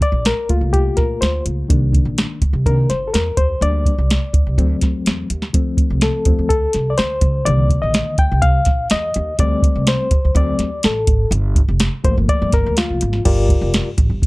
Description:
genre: uptempo 1960s-style soul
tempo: 125 BPM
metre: 4/4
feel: straight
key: G minor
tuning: A4 = 440 Hz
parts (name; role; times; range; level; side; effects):
- barky reed electric piano; accompaniment; 0.0-13.9 s; G2 to G5; -20 LUFS; left 2 dB; overdrive, tremolo, plate reverb
- upright bass; bass; 0.0-14.3 s; F1 to C3; -19 LUFS; equal; none
- soft vintage rhythm box; drums; 0.0-14.3 s; crash cymbal, hi-hat, kick drum, snare drum; -17 LUFS; equal; none
room: little or no reverb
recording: dark, warm production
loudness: -14 LUFS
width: side -21 dB against mid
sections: 0.0-13.3 A section; 13.3-14.3 B section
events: reed electric piano solo 0.0-13.3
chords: 0.0 Bbmaj13; 1.7 Cm7; 3.6 Gm; 4.6 D7; 5.5 Dm7; 7.5 Cm7; 9.4 D7sus4; 10.4 D7; 11.3 Gm7

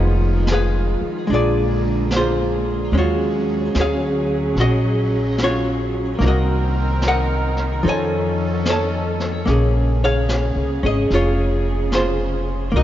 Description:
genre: jazz ballad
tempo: 73 BPM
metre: 4/4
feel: swing 66% on 8ths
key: Bb minor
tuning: A4 = 440 Hz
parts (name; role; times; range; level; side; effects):
- archtop guitar, miked and amplified; accompaniment; 0.0-12.8 s; F3 to A5; -21 LUFS; left 1 dB; none
- warm chamber string section; sustained chords; 0.0-12.8 s; C3 to Bb4; -24 LUFS; right 1 dB; none
- upright bass; bass; 0.0-12.8 s; F1 to F2; -20 LUFS; equal; none
- jazz brush drum kit; drums; 0.5-12.8 s; brushed snare drum, hi-hat, snare drum; -31 LUFS; equal; none
room: moderate cathedral reverb, RT60 6.0 s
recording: in a vast, echoing space, nothing above 7.5 kHz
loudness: -17 LUFS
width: side -12 dB against mid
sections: 0.0-12.8 A section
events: none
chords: 0.0 Fm7b5; 1.3 Bb7; 2.9 Ebm11; 6.2 Cm7b5; 7.8 F7alt; 9.5 Bbm9

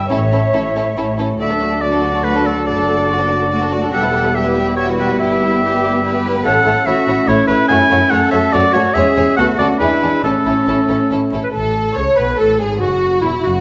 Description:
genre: quick classical-period movement for symphony orchestra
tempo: 142 BPM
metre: 3/4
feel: straight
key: D major, A major from 6.5 s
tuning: A4 = 436 Hz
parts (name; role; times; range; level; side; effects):
- mellow silver concert flute; second line; 0.0-1.2 s; E5; -25 LUFS; equal; none
- rich studio viola section; accompaniment; 0.0-13.6 s; G3 to C#5; -25 LUFS; equal; none
- rich studio double bass section; bass; 0.0-13.6 s; E1 to F#2; -26 LUFS; equal; none
- warm studio cello section; bass; 0.0-13.6 s; E2 to B4; -24 LUFS; equal; none
- rich studio violin section; melody; 0.1-13.6 s; E4 to E5; -26 LUFS; equal; none
- rich studio violin section; second line; 0.1-13.6 s; C#4 to C#5; -27 LUFS; equal; none
- clear oboe; second line; 1.4-11.1 s; A4 to G#5; -19 LUFS; equal; none
- dark French horn section; sustained chords; 1.4-11.3 s; F#3 to D4; -22 LUFS; equal; none
- clear clarinet; second line; 11.4-13.5 s; E4 to C#5; -21 LUFS; equal; none
room: wet recital hall reverb, RT60 1.6 s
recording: vinyl crackle, nothing above 7.9 kHz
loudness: -15 LUFS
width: mono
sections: 0.0-1.4 A section; 1.4-11.5 B section; 11.5-13.6 C section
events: none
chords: 0.1 A; 1.4 D; 2.7 D/F#; 3.9 Em; 5.2 Em/G; 6.5 A; 7.7 F#m; 9.0 C#m/E; 9.4 Bm7/D; 9.8 E7; 10.2 A; 12.8 N.C.

